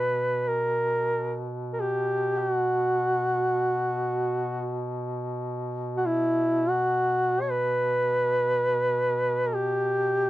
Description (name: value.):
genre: caucasian folk, Caucasian lament.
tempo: free time.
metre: none.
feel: none.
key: unclear.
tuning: A4 = 440 Hz.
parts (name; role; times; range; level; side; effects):
warm duduk; melody; 0.0-10.3 s; E4 to C#5; -24 LUFS; equal; none.
warm duduk; drone; 0.0-10.3 s; B2; -32 LUFS; right 1 dB; none.
room: moderate booth ambience, RT60 0.2 s.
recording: dry, close 1970s-style studio recording.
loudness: -24 LUFS.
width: side -16 dB against mid.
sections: 0.0-10.3 A section.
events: none.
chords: none.